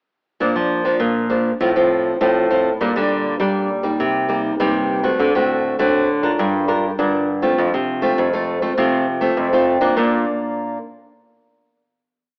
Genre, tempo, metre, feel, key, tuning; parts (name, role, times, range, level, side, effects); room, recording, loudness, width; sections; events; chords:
samba and choro; 101 BPM; 4/4; straight; Bb major; A4 = 440 Hz
nylon-string guitar; accompaniment; 0.4-10.8 s; G2 to Bb4; -20 LUFS; equal
nylon-string guitar; bass; 0.4-10.2 s; F2 to G3; -23 LUFS; equal
wet large studio reverb, RT60 1.4 s; worn, warbling old tape, cassette tape, warbly pitch drift, AM radio sound; -19 LUFS; mono
0.4-10.0 A section; 10.0-12.3 final chord
0.4 Bb; 1.6 F/A; 2.8 Gm/Bb; 4.0 Cm7; 5.2 D7; 6.4 Gm7; 7.6 F; 10.0 Bb